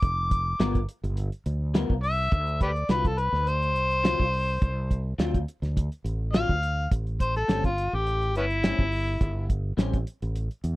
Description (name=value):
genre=straight-eighth soul blues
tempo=104 BPM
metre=4/4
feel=straight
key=unclear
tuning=A4 = 440 Hz
part: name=overdriven harmonica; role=melody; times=0.0-9.5 s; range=B3 to D6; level=-27 LUFS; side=left 1 dB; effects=none
part: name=fretless electric bass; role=bass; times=0.0-10.8 s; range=F1 to E2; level=-28 LUFS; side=equal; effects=none
part: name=cloth-damped thuddy drum kit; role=drums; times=0.0-10.8 s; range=hi-hat, kick drum, snare drum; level=-24 LUFS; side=equal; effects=none
part: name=electric guitar through a small old amp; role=stabs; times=0.6-10.0 s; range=A2 to A#4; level=-30 LUFS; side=left 4 dB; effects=wide subtle chorus
room=little or no reverb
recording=dry, close 1970s-style studio recording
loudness=-24 LUFS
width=side -19 dB against mid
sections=0.0-10.8 A section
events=none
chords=0.0 G7#9; 2.3 D7#9; 6.9 A7#9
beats=| 0.02 0.59 1.17 1.74 | 2.32 2.89 3.47 4.04 | 4.62 5.19 5.76 6.34 | 6.91 7.49 8.06 8.64 | 9.21 9.79 10.36